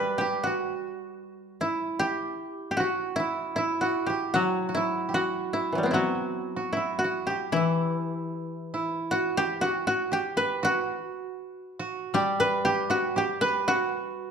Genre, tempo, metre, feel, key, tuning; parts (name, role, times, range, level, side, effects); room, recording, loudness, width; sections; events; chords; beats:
japanese traditional, Japanese chamber music; 78 BPM; 4/4; rubato; E hirajoshi; A4 = 440 Hz
koto; melody; 0.0-14.3 s; E3 to B4; -28 LUFS; equal
koto; second line; 0.0-14.3 s; E4 to B4; -30 LUFS; right 4 dB
koto; accompaniment; 0.0-14.3 s; E3 to G3; -32 LUFS; left 6 dB
moderate recital hall reverb, RT60 1.3 s; dark, warm production; -25 LUFS; side -6 dB against mid
0.0-14.3 A section
0.46 | 1.23 2.01 2.79 3.57 | 4.36 5.15 5.94 6.74 | 7.54 8.32 9.10 9.87 | 10.63 11.40 12.16 12.91 | 13.67